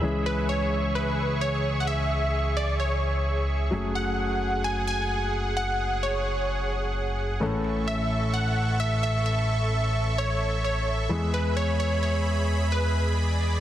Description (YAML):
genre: EDM, festival progressive house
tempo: 130 BPM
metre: 4/4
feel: straight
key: A major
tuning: A4 = 440 Hz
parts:
  - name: warm concert grand piano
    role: accompaniment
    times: 0.0-13.6 s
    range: A2 to A4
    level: -31 LUFS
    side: left 2 dB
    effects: none
  - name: supersaw pad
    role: sustained chords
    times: 0.0-13.6 s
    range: G#4 to C#6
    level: -32 LUFS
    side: right 2 dB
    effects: low-pass filter
  - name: fat analog bass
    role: bass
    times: 0.0-13.6 s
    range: F#1 to E2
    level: -27 LUFS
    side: equal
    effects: none
  - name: plucky unison lead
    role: melody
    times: 0.3-13.2 s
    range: B4 to G#5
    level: -29 LUFS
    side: right 1 dB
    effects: tape echo
  - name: electronic hi-hat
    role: drums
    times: 0.3-13.3 s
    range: none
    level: barely audible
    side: none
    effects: none
room: light reverb, digital ambience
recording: dense, heavily limited modern master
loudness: -24 LUFS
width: side -12 dB against mid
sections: 0.0-13.6 A section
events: none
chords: 0.0 C#m; 3.7 F#madd9; 7.4 A; 11.1 E